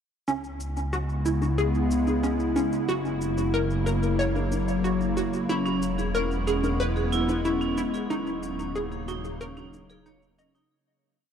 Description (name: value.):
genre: ambient, sequencer-driven space music.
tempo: 92 BPM.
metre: 4/4.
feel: straight.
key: C# dorian.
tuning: A4 = 439 Hz.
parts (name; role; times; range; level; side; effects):
evolving wavetable pad; sustained chords; 0.7-10.7 s; C#3 to E4; -27 LUFS; left 1 dB; chorus, built-in reverb.
hollow square pluck; riff; 0.3-10.6 s; C#4 to D#5; -30 LUFS; equal; lush chorus, analog delay.
fat analog bass; bass; 0.3-10.7 s; D#1 to C#2; -31 LUFS; equal; none.
shaker and bongos; percussion; 0.3-10.7 s; none; -38 LUFS; left 1 dB; analog delay.
vibraphone with hard mallets; arpeggios; 5.5-10.6 s; C#4 to C#5; -32 LUFS; right 2 dB; auto-pan, analog delay.
room: wet huge ambient reverb, RT60 8.3 s.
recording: dark, warm production.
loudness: -24 LUFS.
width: side -8 dB against mid.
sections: 0.3-10.7 A section.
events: fade-out 7.2-10.7.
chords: 0.3 C#m7; 2.9 F#7; 5.5 E; 8.1 D#m7.